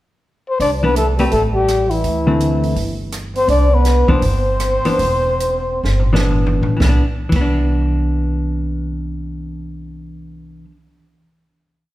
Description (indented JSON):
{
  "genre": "jazz, small-group swing and bop",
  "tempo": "116-166 BPM",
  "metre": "4/4",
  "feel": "swing 64% on 8ths",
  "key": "C major",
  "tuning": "A4 = 435 Hz",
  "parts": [
    { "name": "breathy trumpet", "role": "melody", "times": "0.5-6.3 s", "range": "E4 to D5", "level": "-18 LUFS", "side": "left 2 dB", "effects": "none" },
    { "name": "breathy trombone", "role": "second line", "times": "0.6-6.3 s", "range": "E3 to D4", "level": "-24 LUFS", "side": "right 3 dB", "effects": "none" },
    { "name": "upright bass", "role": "bass", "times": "0.6-10.6 s", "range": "E1 to D2", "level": "-18 LUFS", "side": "equal", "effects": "none" },
    { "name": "compact cocktail drum kit", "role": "drums", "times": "0.6-7.5 s", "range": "crash cymbal, hi-hat, kick drum, rim click, snare drum, toms", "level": "-24 LUFS", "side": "equal", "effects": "none" },
    { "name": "hollow-body jazz guitar", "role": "accompaniment", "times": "0.8-10.8 s", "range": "D3 to B4", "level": "-20 LUFS", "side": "left 1 dB", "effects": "none" }
  ],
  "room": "moderate recital hall reverb, RT60 1.5 s",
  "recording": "recorded in a church or concert hall",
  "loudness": "-14 LUFS",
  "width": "side -16 dB against mid",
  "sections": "0.0-0.6 pickup bar; 0.6-6.8 A section; 6.8-11.0 final chord",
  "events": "slowing down 3.5-6.8; drum fill 5.8-6.8",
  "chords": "0.0 N.C.; 0.6 Cmaj9; 1.3 Emadd11/A; 2.0 D5; 2.8 Gsus4; 3.5 Cmaj9"
}